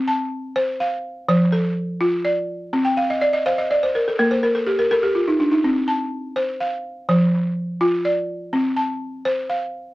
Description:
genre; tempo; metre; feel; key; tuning
west african traditional; 83 BPM (dotted quarters); 12/8; straight; C dorian; A4 = 440 Hz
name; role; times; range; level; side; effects
balafon; solo; 0.0-9.9 s; F3 to A5; -18 LUFS; equal; none
room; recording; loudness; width
light reverb; close, detailed microphones; -18 LUFS; side -18 dB against mid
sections
0.0-9.9 A section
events
balafon fill 2.9-5.6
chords
0.0 C5; 1.3 F; 2.7 Cm11; 4.2 N.C.; 5.6 C5; 7.1 F5; 8.5 F/C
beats
0.56 1.29 2.01 | 2.74 3.46 4.19 4.91 | 5.64 6.36 7.09 7.81 | 8.54 9.26

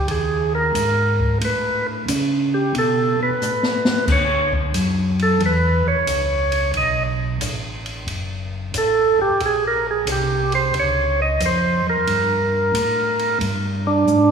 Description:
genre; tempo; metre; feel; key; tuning
soul jazz organ trio; 90 BPM; 4/4; swing 68% on 8ths; unclear; A4 = 442 Hz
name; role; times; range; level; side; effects
percussive tonewheel organ; melody; 0.0-14.3 s; D4 to Eb5; -19 LUFS; right 2 dB; slow rotary speaker
mellow tonewheel organ; bass; 0.0-14.3 s; F#1 to C#3; -22 LUFS; equal; slow rotary speaker
open jazz drum kit; drums; 0.1-14.3 s; crash cymbal, hi-hat, kick drum, ride cymbal, snare drum; -27 LUFS; left 1 dB; none
room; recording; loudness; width
moderate concert hall reverb, RT60 2.4 s; recorded in a church or concert hall, small room ambience; -17 LUFS; side -6 dB against mid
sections
0.0-14.3 A section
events
tonewheel organ solo 0.0-14.3; drum fill 3.4-4.1, 14.1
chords
0.0 Ab5; 1.4 Aadd9; 4.1 Dmaj9; 6.7 B5; 9.4 Bbmadd9; 12.1 Gmadd9; 13.4 G5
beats
0.08 0.75 | 1.41 2.08 2.75 3.41 | 4.08 4.75 5.41 6.08 | 6.75 7.41 8.08 8.74 | 9.41 10.08 10.74 11.41 | 12.07 12.74 13.41 14.08

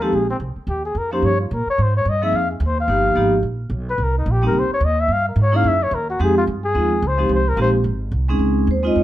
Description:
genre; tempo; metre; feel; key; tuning
jazz, small-group swing and bop; 217 BPM; 4/4; swing 59% on 8ths; F minor; A4 = 439 Hz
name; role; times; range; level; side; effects
mellow flugelhorn; melody; 0.0-7.7 s; C4 to F5; -21 LUFS; left 2 dB; plate reverb
vibraphone with medium mallets; accompaniment; 0.0-9.0 s; F3 to Eb5; -19 LUFS; equal; none
upright bass; bass; 0.0-9.0 s; G1 to Bb2; -20 LUFS; right 1 dB; none
room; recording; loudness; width
moderate club reverb, RT60 0.7 s; none; -16 LUFS; side -14 dB against mid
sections
0.0-8.4 A section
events
flugelhorn solo 0.0-8.4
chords
0.0 Fm9; 0.7 Eb9; 1.8 Ab6; 2.9 G7alt; 4.0 Cm7; 5.1 Gdim; 5.6 Ebm7; 6.2 Fm9; 7.8 Ab; 8.4 Dbmaj9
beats
0.12 0.40 | 0.67 0.95 1.23 1.50 | 1.78 2.06 2.33 2.61 | 2.88 3.16 3.44 3.71 | 3.99 4.26 4.54 4.82 | 5.09 5.37 5.64 5.92 | 6.20 6.47 6.75 7.02 | 7.30 7.57 7.85 8.13 | 8.40 8.68 8.96

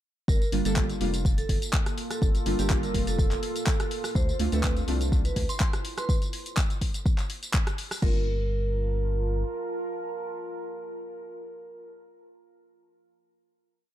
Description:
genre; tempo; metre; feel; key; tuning
deep house; 124 BPM; 4/4; swing 53% on 16ths; G dorian; A4 = 440 Hz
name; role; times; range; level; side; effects
vibraphone with medium mallets; melody; 0.3-11.9 s; G4 to C5; -36 LUFS; right 3 dB; ping-pong delay
deep dark ambient pad; sustained chords; 1.2-11.9 s; Bb3 to A5; -38 LUFS; right 1 dB; chorus, built-in reverb, sidechain pumping
rubbery square bass; bass; 0.3-9.4 s; F1 to D2; -29 LUFS; equal; sidechain pumping
deep house drum kit; drums; 0.3-8.1 s; crash cymbal, handclaps, hi-hat, rim click, tambourine; -34 LUFS; left 1 dB; none
electronic kick drum; drums; 0.3-8.1 s; none; -25 LUFS; equal; none
deep mellow chord stab; stabs; 0.5-11.9 s; G3 to A4; -31 LUFS; right 1 dB; chorus, sidechain pumping, ping-pong delay
soft synth bell; melody; 5.5-6.1 s; C6; -39 LUFS; right 3 dB; chorus, phaser, ping-pong delay
room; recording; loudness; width
digital ambience; dark, warm production; -25 LUFS; side -12 dB against mid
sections
0.3-8.0 drop; 8.0-11.9 final chord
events
drop 0.3-8.0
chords
0.3 Gm7; 4.2 Dm7; 8.0 Gm7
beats
| 0.28 0.77 1.25 1.73 | 2.22 2.70 3.19 3.67 | 4.15 4.64 5.12 5.61 | 6.09 6.57 7.06 7.54 | 8.02 8.51 8.99 9.48 | 9.96 10.44 10.93 11.41

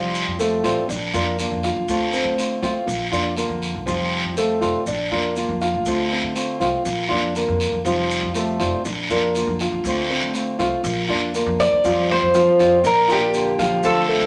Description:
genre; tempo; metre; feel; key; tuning
latin, Cuban son and guajira; 121 BPM; 4/4; straight; unclear; A4 = 441 Hz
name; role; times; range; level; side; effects
nylon-string guitar; accompaniment; 0.0-14.3 s; D3 to F4; -27 LUFS; equal; none
dark baby grand piano; arpeggios; 0.0-14.3 s; F3 to F5; -26 LUFS; equal; none
upright bass; bass; 0.0-14.3 s; F1 to D3; -31 LUFS; equal; none
maracas; percussion; 0.1-14.1 s; none; -41 LUFS; equal; none
guiro; percussion; 0.4-14.3 s; none; -30 LUFS; equal; none
Cuban tres; melody; 11.6-14.3 s; G4 to D5; -19 LUFS; equal; none
room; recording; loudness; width
wet studio reverb, RT60 0.6 s; none; -21 LUFS; mono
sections
0.0-11.8 A section; 11.8-14.3 B section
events
none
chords
0.0 Fadd9; 0.9 Bb; 1.9 Dm7; 2.9 Bb; 3.9 Fadd9; 4.9 Bb; 5.9 Dm7; 6.9 Bb; 7.9 Fadd9; 8.9 Bb; 9.8 Dm7; 10.8 Bb; 11.8 Fsus2; 12.8 Bb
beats
0.40 0.89 1.39 | 1.89 2.38 2.88 3.38 | 3.88 4.37 4.87 5.37 | 5.87 6.36 6.86 7.36 | 7.86 8.36 8.85 9.35 | 9.85 10.35 10.84 11.34 | 11.84 12.34 12.84 13.33 | 13.83

